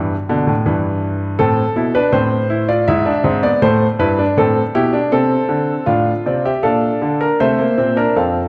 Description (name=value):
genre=classical, baroque-style 4-part fugue for grand piano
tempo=80 BPM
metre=3/4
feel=straight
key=A minor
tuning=A4 = 440 Hz
part: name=warm concert grand piano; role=solo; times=0.0-8.5 s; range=F2 to F5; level=-16 LUFS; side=equal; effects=none
room=moderate concert hall reverb, RT60 1.9 s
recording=none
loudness=-16 LUFS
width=mono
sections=0.0-5.9 A section; 5.9-8.5 B section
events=none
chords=0.0 Em; 0.7 Em/G; 1.4 Am; 2.9 E7/G#; 3.6 Am; 5.1 Am/C; 5.9 F/A; 6.6 Bbmaj7; 7.4 C